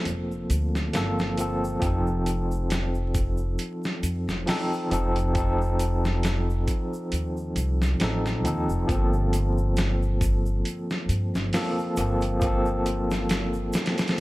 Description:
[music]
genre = trip hop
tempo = 68 BPM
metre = 4/4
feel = swing 55% on 16ths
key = G minor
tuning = A4 = 438 Hz
[part]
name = overdriven tine electric piano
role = accompaniment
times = 0.0-14.2 s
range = F3 to A4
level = -27 LUFS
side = equal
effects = tremolo, tape echo
[part]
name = upright bass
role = bass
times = 0.1-13.7 s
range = F1 to G2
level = -26 LUFS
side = equal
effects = tube saturation
[part]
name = dusty soul sampler-style drum kit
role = drums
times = 0.1-14.2 s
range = hi-hat, kick drum, snare drum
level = -28 LUFS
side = equal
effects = none
[part]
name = egg shaker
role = percussion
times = 0.1-14.1 s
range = none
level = -45 LUFS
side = right 1 dB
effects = none
[sound]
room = digital ambience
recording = vinyl crackle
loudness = -23 LUFS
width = side -18 dB against mid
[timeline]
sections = 0.0-14.2 A section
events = none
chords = 0.0 Gm11; 1.8 F7; 8.9 Gm11

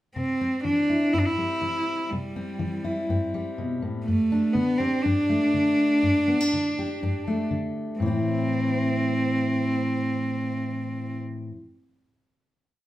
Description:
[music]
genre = indie folk with a building arrangement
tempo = 122 BPM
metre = 4/4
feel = straight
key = A minor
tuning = A4 = 441 Hz
[part]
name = warm cello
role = melody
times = 0.2-11.1 s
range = G3 to E4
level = -24 LUFS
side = right 1 dB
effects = none
[part]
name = fingerpicked steel-string acoustic guitar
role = accompaniment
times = 0.2-11.6 s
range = G2 to G4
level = -27 LUFS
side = left 2 dB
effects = none
[sound]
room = moderate large studio reverb, RT60 0.8 s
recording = band playing live in one room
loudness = -23 LUFS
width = side -15 dB against mid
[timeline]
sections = 0.1-8.0 verse; 8.0-11.9 final chord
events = none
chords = 0.1 C; 4.1 Gsus2; 8.0 Am

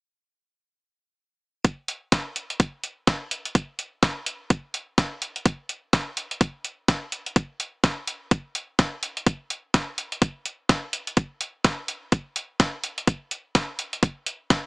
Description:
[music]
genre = house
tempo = 126 BPM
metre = 4/4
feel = swing 60% on 16ths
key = none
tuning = none
[part]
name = breakbeat sampler-style drum kit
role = drums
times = 1.6-14.6 s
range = hi-hat, snare drum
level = -28 LUFS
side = equal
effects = high-pass filter on hats, high-pass filter on snare, high-pass filter on room
[part]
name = electronic kick drum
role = drums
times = 1.6-14.6 s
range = none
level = -19 LUFS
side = equal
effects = none
[sound]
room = little or no reverb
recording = small speaker sound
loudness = -24 LUFS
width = side -28 dB against mid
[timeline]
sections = 1.6-14.7 A section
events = none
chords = none

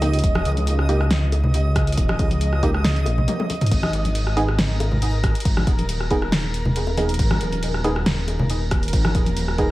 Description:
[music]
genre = deep dubstep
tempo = 138 BPM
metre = 4/4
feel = swing 54% on 16ths, half-time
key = G# harmonic minor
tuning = A4 = 442 Hz
[part]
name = filtered dub chord stab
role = stabs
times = 0.0-9.7 s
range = A#3 to G#4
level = -28 LUFS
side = right 2 dB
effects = chorus, dub echo
[part]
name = dark detuned saw bass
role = bass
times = 0.0-9.7 s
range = D#1 to C#2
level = -22 LUFS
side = equal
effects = none
[part]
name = deep house drum kit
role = drums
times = 0.0-9.7 s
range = crash cymbal, hi-hat, rim click, snare drum, toms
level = -26 LUFS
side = equal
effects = none
[part]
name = bongos and congas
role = percussion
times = 0.0-9.3 s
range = none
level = -27 LUFS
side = left 1 dB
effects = dub echo
[part]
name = backwards swelling texture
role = texture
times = 0.0-9.7 s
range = A#4 to D#5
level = -30 LUFS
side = right 1 dB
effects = built-in reverb
[part]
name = electronic kick drum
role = drums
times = 0.2-9.7 s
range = none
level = -21 LUFS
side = equal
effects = none
[sound]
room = digital ambience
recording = vinyl crackle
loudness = -18 LUFS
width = side -17 dB against mid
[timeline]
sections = 0.0-9.7 A section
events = drum fill 3.3-3.7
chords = 0.0 D#5; 3.7 G#5

